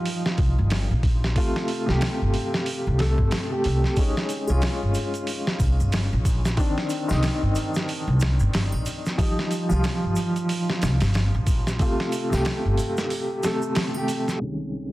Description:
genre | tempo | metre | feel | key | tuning
trip hop | 92 BPM | 4/4 | swing 59% on 16ths | unclear | A4 = 438 Hz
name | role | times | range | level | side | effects
warm upright piano | accompaniment | 0.0-14.9 s | C2 to A4 | -26 LUFS | equal | tremolo, low-pass filter, tape echo
boom bap sampler-style drum kit | drums | 0.1-14.4 s | hi-hat, kick drum, snare drum | -26 LUFS | equal | soft clipping on snare
upright bass | bass | 0.4-12.8 s | G1 to C2 | -23 LUFS | equal | none
tube shaker and triangle | percussion | 4.0-14.9 s | none | -42 LUFS | right 2 dB | none
room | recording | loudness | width
small room ambience | dense, heavily limited modern master, vinyl crackle, low-pass filter | -21 LUFS | side -17 dB against mid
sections
0.0-14.4 A section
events
kick drops out 13.1-14.4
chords
0.0 Ebadd9; 1.4 G9sus4; 4.0 Dbsus2; 6.6 Cmadd9; 9.2 Ebadd9; 11.8 G9sus4; 14.4 Dbsus2/C

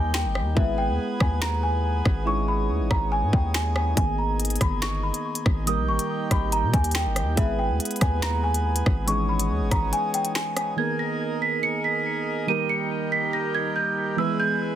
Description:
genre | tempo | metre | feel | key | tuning
hip hop, drill | 141 BPM | 4/4 | half-time | G# harmonic minor | A4 = 443 Hz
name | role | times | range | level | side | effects
worn celesta | melody | 0.0-14.6 s | E5 to D#7 | -27 LUFS | equal | ping-pong delay
soft electric-piano-like synth keys | accompaniment | 0.0-14.8 s | D#3 to B4 | -30 LUFS | right 2 dB | chorus
hand-pumped harmonium | sustained chords | 0.0-14.8 s | G3 to G#5 | -33 LUFS | right 2 dB | none
hard-hitting 808-style bass | bass | 0.0-9.9 s | G1 to B2 | -26 LUFS | equal | none
drill drum kit | drums | 0.1-10.7 s | finger snaps, hi-hat, kick drum, rim click, snare drum | -25 LUFS | equal | soft clipping on snare
room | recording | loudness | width
little or no reverb | dense, heavily limited modern master | -22 LUFS | side -11 dB against mid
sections
0.0-10.8 A section; 10.8-14.8 B section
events
break 0.0-4.0; kick muted 9.9-10.8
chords
0.0 G#sus2 (rootless); 0.6 E/G#; 2.3 C#madd9/G#; 4.0 G#madd9; 7.4 E/G#; 9.1 C#madd9/G#; 10.8 G#madd9; 12.5 D#; 14.2 E

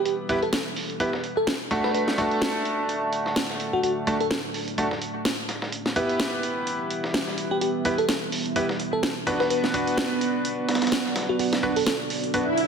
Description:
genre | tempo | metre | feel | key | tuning
bass house | 127 BPM | 4/4 | swing 57% on 16ths | E minor | A4 = 440 Hz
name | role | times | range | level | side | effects
deep dark ambient pad | sustained chords | 0.0-12.7 s | A3 to E5 | -31 LUFS | right 4 dB | chorus, built-in reverb
bright concert grand piano | stabs | 0.0-12.4 s | A3 to B4 | -27 LUFS | equal | tape echo
bell-like FM electric piano | melody | 0.1-4.4, 7.5-12.0 s | F#4 to B4 | -28 LUFS | equal | chorus, phaser, cassette tape, tape echo
dusty soul sampler-style drum kit | drums | 0.1-12.7 s | hi-hat, snare drum | -32 LUFS | right 1 dB | high-pass filter on hats, low-pass filter on hats, soft clipping on snare, high-pass filter on snare, low-pass filter on snare
electronic snare drum | drums | 0.5-12.0 s | none | -29 LUFS | equal | none
swell | sound effects | 12.4-12.7 s | none | -23 LUFS | right 2 dB | none
room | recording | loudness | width
moderate lush hall reverb, RT60 2.1 s | dense, heavily limited modern master | -23 LUFS | side -6 dB against mid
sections
0.0-12.7 A section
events
filter sweep on ambient pad 0.0-12.7; swell 12.4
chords
0.0 Em; 1.9 D; 5.7 Em; 9.5 Bm

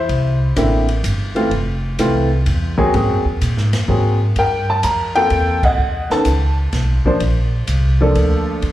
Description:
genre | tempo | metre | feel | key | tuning
jazz piano trio | 127 BPM | 3/4 | swing 67% on 8ths | unclear | A4 = 441 Hz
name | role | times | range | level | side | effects
warm upright piano | melody | 0.0-8.6 s | D3 to Bb5 | -18 LUFS | equal | slapback echo
upright bass | bass | 0.0-8.7 s | F1 to A#2 | -17 LUFS | equal | none
open jazz drum kit | drums | 0.1-8.7 s | crash cymbal, hi-hat, kick drum, ride cymbal, snare drum | -26 LUFS | equal | none
room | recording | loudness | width
light reverb, small room ambience | live gig heard through the venue's PA, club reverb | -14 LUFS | side -14 dB against mid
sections
0.0-8.7 A section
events
band accent 5.5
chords
0.1 C9; 1.5 Fmaj7; 2.9 G#9; 4.4 Gm11; 5.8 B9; 7.2 Bbmaj7

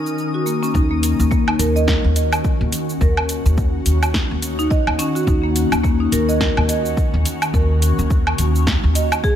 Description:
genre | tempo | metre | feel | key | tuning
organic downtempo | 106 BPM | 4/4 | swing 59% on 16ths | Eb minor pentatonic | A4 = 439 Hz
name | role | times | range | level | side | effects
ethereal airy pad | sustained chords | 0.0-9.4 s | Eb3 to Bb4 | -25 LUFS | left 1 dB | ensemble chorus, built-in reverb, phaser, sidechain pumping
twinkling granular texture | texture | 0.0-0.8 s | Bb4 to Eb6 | -33 LUFS | left 4 dB | built-in reverb
deep house drum kit | drums | 0.1-9.4 s | cabasa, hi-hat, snare drum, woodblock | -23 LUFS | right 1 dB | overdrive
marimba with medium mallets | arpeggios | 0.3-9.4 s | Bb3 to Eb5 | -22 LUFS | equal | ping-pong delay
upright bass | bass | 0.7-9.2 s | Eb2 | -19 LUFS | equal | sidechain pumping
electronic kick drum | drums | 0.7-9.4 s | none | -19 LUFS | equal | overdrive
room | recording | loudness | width
light reverb | none | -15 LUFS | side -10 dB against mid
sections
0.7-9.4 A section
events
none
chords
0.0 Ebm7

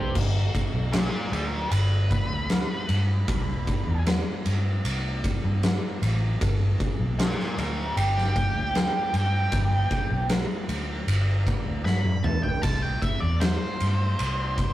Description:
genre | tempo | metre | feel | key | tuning
blues rock power trio and southern rock | 77 BPM | 4/4 | straight | G major | A4 = 440 Hz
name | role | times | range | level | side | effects
vintage muted picked electric bass | bass | 0.0-14.7 s | G1 to G2 | -25 LUFS | equal | none
oversized low-tuned drum kit | drums | 0.2-14.7 s | crash cymbal, kick drum, ride cymbal, snare drum, splash cymbal, toms | -27 LUFS | equal | none
octave-fuzz lead guitar | melody | 0.9-14.7 s | D4 to B5 | -30 LUFS | right 1 dB | wah, distortion, slapback echo
room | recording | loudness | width
light reverb | rough rehearsal-room recording, warm saturation | -23 LUFS | side -14 dB against mid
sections
0.2-14.7 A section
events
drum fill 0.0, 11.9-12.6; lead electric guitar solo 0.2-14.7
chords
0.2 G; 3.3 C; 6.4 G; 12.6 C

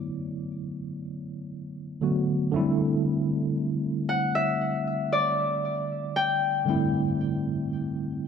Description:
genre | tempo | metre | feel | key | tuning
R&B | 58 BPM | 4/4 | straight | D mixolydian | A4 = 440 Hz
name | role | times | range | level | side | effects
Celtic harp | melody | 0.0-8.2 s | D5 to G5 | -26 LUFS | left 3 dB | ping-pong delay
tine electric piano | accompaniment | 0.0-8.3 s | D3 to F#4 | -27 LUFS | right 1 dB | medium stereo tremolo
room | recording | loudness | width
light reverb, small room ambience | dark, warm production | -24 LUFS | side -7 dB against mid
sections
0.0-2.5 A section; 2.5-8.3 B section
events
none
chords
0.0 E9sus4; 2.5 D9sus4

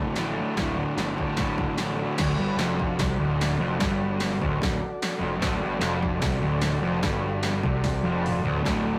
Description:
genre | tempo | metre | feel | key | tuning
garage rock duo or trio | 149 BPM | 4/4 | straight | D mixolydian | A4 = 440 Hz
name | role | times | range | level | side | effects
combo organ | sustained chords | 0.0-9.0 s | F#4 to D5 | -36 LUFS | equal | none
fuzz guitar | riff | 0.0-9.0 s | D2 to D3 | -29 LUFS | equal | distortion
fuzz picked electric bass | bass | 0.0-8.9 s | D1 to C2 | -33 LUFS | equal | overdrive
punchy analog drum machine | drums | 0.2-8.7 s | crash cymbal, hi-hat, kick drum, snare drum, toms | -32 LUFS | equal | none
room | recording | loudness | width
moderate stone room reverb, RT60 1.3 s | rough rehearsal-room recording, warm saturation | -26 LUFS | mono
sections
0.0-2.2 A section; 2.2-8.6 B section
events
drum fill 7.8-8.6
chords
0.0 D

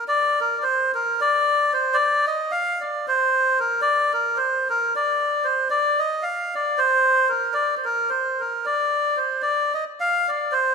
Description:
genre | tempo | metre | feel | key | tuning
balkan folk | 225 BPM (eighths) | 7/8 | straight | unclear | A4 = 440 Hz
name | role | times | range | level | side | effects
melodica | solo | 0.0-10.7 s | Bb4 to F5 | -19 LUFS | equal | none
room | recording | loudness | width
moderate recital hall reverb, RT60 1.4 s | minimal, uncompressed stereo recording | -19 LUFS | side -5 dB against mid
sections
0.1-10.7 A section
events
none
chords
none

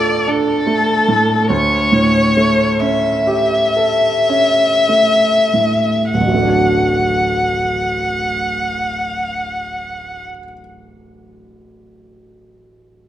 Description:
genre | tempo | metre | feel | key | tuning
classical, romantic duo for violin and grand piano | 31-51 BPM | 3/4 | rubato | unclear | A4 = 440 Hz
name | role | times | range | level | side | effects
rich violin | melody | 0.0-10.2 s | A4 to F#5 | -15 LUFS | left 1 dB | none
clear grand piano | accompaniment | 0.0-13.1 s | D1 to A4 | -17 LUFS | right 1 dB | none
room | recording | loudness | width
wet concert hall reverb, RT60 1.9 s | none | -13 LUFS | side -12 dB against mid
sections
0.0-6.1 A section; 6.1-11.4 B section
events
slowing down 0.0-6.1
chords
0.0 Dm; 1.5 A7/D; 6.1 D

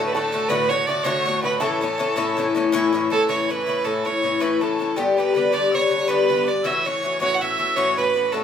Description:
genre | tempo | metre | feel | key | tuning
celtic folk, Celtic slip jig | 107 BPM (dotted quarters) | 9/8 | straight | A mixolydian | A4 = 440 Hz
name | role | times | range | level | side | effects
clear fiddle | melody | 0.0-8.4 s | G4 to F#5 | -22 LUFS | right 4 dB | none
bluegrass banjo | second line | 0.0-2.9 s | A4 to D5 | -32 LUFS | right 3 dB | none
tin whistle | second line | 0.0-8.4 s | G5 to F#6 | -30 LUFS | left 2 dB | none
Irish bouzouki | accompaniment | 0.0-8.4 s | G2 to G4 | -22 LUFS | left 5 dB | none
room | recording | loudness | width
moderate large studio reverb, RT60 0.9 s | band playing live in one room | -18 LUFS | side -8 dB against mid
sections
0.0-3.3 A section; 3.3-8.4 B section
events
none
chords
0.0 D; 1.6 A; 5.0 G; 6.6 A6

